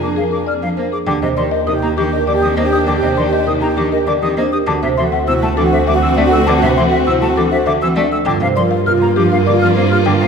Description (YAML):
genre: classical, minimalist pattern music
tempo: 100 BPM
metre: 3/4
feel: straight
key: Eb major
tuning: A4 = 441 Hz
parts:
  - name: buzzing marimba with medium mallets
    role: melody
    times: 0.0-10.3 s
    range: G4 to A5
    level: -20 LUFS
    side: left 9 dB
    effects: none
  - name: alto flute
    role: second line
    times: 0.0-10.3 s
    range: D4 to G4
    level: -20 LUFS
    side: right 2 dB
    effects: none
  - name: rich cello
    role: accompaniment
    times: 0.0-10.3 s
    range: C3 to Bb3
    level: -21 LUFS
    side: equal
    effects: none
  - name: warm chamber violin section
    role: sustained chords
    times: 0.0-10.3 s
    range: Bb3 to Ab4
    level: -22 LUFS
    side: left 5 dB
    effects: none
  - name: hollow concert flute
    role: arpeggios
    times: 0.0-10.3 s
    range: Eb5 to F6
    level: -21 LUFS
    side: left 2 dB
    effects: none
  - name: vibraphone with medium mallets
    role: arpeggios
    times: 0.0-10.3 s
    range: C4 to C5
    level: -20 LUFS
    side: right 6 dB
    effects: none
  - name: rich double bass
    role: bass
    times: 0.0-10.3 s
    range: D2 to G2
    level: -20 LUFS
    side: right 4 dB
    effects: none
room: moderate scoring stage reverb, RT60 1.8 s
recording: none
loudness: -12 LUFS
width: side -6 dB against mid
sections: 0.0-1.1 A section; 1.1-10.3 B section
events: none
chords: 0.0 Bb7/F; 1.1 Ebmaj7; 4.7 D7; 8.3 Gm7